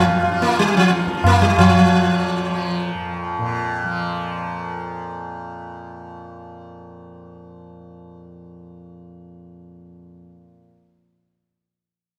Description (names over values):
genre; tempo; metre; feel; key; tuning
indian classical, Hindustani; 178 BPM; 4/4; straight; unclear; A4 = 439 Hz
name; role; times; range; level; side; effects
sitar; melody; 0.0-2.9 s; F3 to F4; -19 LUFS; equal; none
tanpura; drone; 0.0-10.8 s; F2 to F3; -29 LUFS; equal; none
tabla; percussion; 0.1-1.7 s; none; -21 LUFS; equal; none
room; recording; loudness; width
wet recital hall reverb, RT60 1.2 s; none; -19 LUFS; mono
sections
0.0-1.6 A section; 1.6-4.3 B section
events
none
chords
none